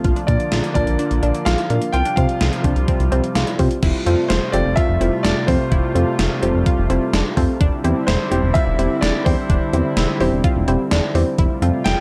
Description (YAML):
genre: synth-pop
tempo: 127 BPM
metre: 4/4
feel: straight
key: F major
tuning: A4 = 439 Hz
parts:
  - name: chorused pulse-width pad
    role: sustained chords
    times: 0.0-12.0 s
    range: C3 to F4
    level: -26 LUFS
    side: equal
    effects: none
  - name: analog pluck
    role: arpeggios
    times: 0.0-12.0 s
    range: C4 to G4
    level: -30 LUFS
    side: equal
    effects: chorus, phaser, slapback echo
  - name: chorused synth bass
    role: bass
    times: 0.0-11.9 s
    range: E1 to C3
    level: -22 LUFS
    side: equal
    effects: none
  - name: gated 80s digital drum machine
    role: drums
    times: 0.0-12.0 s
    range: crash cymbal, hi-hat, kick drum, snare drum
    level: -23 LUFS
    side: equal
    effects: gated reverb, gated reverb snare, overdrive
  - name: clear grand piano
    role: melody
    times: 0.3-12.0 s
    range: C5 to G5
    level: -27 LUFS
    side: equal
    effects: slapback echo
  - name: soft round pluck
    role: accompaniment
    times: 0.3-11.8 s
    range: Bb3 to D5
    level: -26 LUFS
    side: equal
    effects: chorus
room: light reverb, digital ambience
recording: dark, warm production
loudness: -18 LUFS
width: mono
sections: 0.0-3.8 A section; 3.8-12.0 B section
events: none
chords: 0.0 Bb; 1.9 Csus4; 3.8 Fadd9; 7.6 Cadd9/E; 11.4 Fadd9